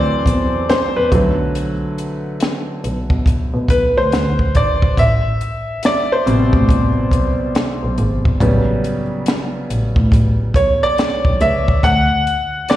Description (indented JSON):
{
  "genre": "R&B, neo-soul",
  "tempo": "70 BPM",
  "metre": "4/4",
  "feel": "swing 64% on 16ths",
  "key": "A dorian",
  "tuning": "A4 = 440 Hz",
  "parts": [
    { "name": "clear baby grand piano", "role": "accompaniment", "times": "0.0-12.8 s", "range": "B2 to F#5", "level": "-18 LUFS", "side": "equal", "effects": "slapback echo" },
    { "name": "muted double bass", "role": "bass", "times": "0.0-12.2 s", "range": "G#1 to B2", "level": "-19 LUFS", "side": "equal", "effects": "none" },
    { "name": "compact cocktail drum kit", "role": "drums", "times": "0.3-12.8 s", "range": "hi-hat, kick drum, snare drum", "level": "-16 LUFS", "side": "equal", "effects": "none" }
  ],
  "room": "light reverb",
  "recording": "live gig heard through the venue's PA, recital hall reverb",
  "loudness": "-14 LUFS",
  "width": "side -13 dB against mid",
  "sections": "0.0-12.8 A section",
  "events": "grand piano solo 0.0-12.8",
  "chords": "0.0 D9; 1.1 Bm7; 5.0 Am9; 8.4 A13; 11.8 D"
}